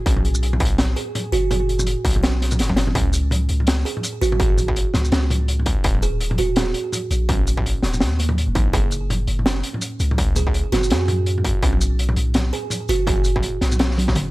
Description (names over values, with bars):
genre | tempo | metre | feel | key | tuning
half-time drum and bass | 166 BPM | 4/4 | swing 58% on 16ths, half-time | unclear | A4 = 440 Hz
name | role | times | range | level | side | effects
pulsing gated texture | texture | 0.0-3.0 s | G#4 | -40 LUFS | left 3 dB | none
kalimba | arpeggios | 0.1-14.0 s | A#3 to G#4 | -27 LUFS | right 5 dB | digital delay
long sustained 808-style bass | bass | 0.1-14.3 s | D#1 to F#2 | -21 LUFS | equal | none
crunchy breakbeat drum kit | drums | 0.1-14.2 s | hi-hat, shaker, snare drum, toms | -23 LUFS | equal | none
electronic kick drum | drums | 0.1-14.1 s | none | -21 LUFS | equal | distortion
room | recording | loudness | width
studio ambience | none | -18 LUFS | side -18 dB against mid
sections
0.0-3.0 A section; 3.0-14.3 A section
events
drop 0.0-3.0, 3.0-14.3; drum fill 2.6-3.0, 13.8-14.3; break 14.2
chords
0.1 B5; 3.0 C#5; 5.8 D#5; 8.7 F#5; 11.6 B5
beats
| 0.06 0.42 0.78 1.14 | 1.50 1.87 2.23 2.59 | 2.95 3.31 3.67 4.04 | 4.40 4.76 5.12 5.48 | 5.84 6.20 6.57 6.93 | 7.29 7.65 8.01 8.37 | 8.73 9.10 9.46 9.82 | 10.18 10.54 10.90 11.26 | 11.63 11.99 12.35 12.71 | 13.07 13.43 13.79 14.16